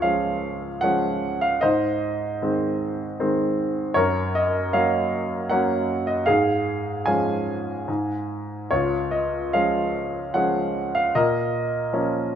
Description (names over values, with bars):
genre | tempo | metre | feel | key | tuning
classical, lyrical solo piano | 76 BPM | 3/4 | uneven beats, rubato | Db major | A4 = 440 Hz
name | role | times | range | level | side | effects
clear grand piano | solo | 0.0-12.4 s | Db2 to Ab5 | -21 LUFS | equal | none
room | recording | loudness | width
moderate recital hall reverb, RT60 1.6 s | minimal, uncompressed stereo recording | -21 LUFS | side -8 dB against mid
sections
0.0-12.4 A section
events
none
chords
0.0 Db; 1.6 Ab; 4.0 Gb; 6.3 Db/Ab; 7.9 Fm/Ab; 8.7 Db; 11.1 Bbm